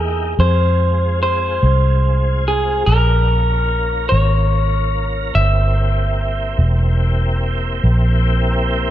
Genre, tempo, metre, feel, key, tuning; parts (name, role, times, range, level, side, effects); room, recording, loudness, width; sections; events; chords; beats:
slow blues; 48 BPM (dotted quarters); 12/8; straight; F harmonic minor; A4 = 441 Hz
electric guitar through a small old amp; melody; 0.0-8.9 s; Ab4 to E5; -20 LUFS; left 1 dB; spring reverb
tonewheel organ; sustained chords; 0.0-8.9 s; Ab3 to Bb4; -25 LUFS; equal; chorus vibrato, slow rotary speaker
vintage muted fingered electric bass; bass; 0.0-8.9 s; E1 to F2; -16 LUFS; equal
little or no reverb; -14 LUFS; side -12 dB against mid
0.0-8.9 A section
0.4 Fm; 2.9 Bbm; 5.4 C7
| 0.39 1.63 2.87 4.12 | 5.36 6.60 7.84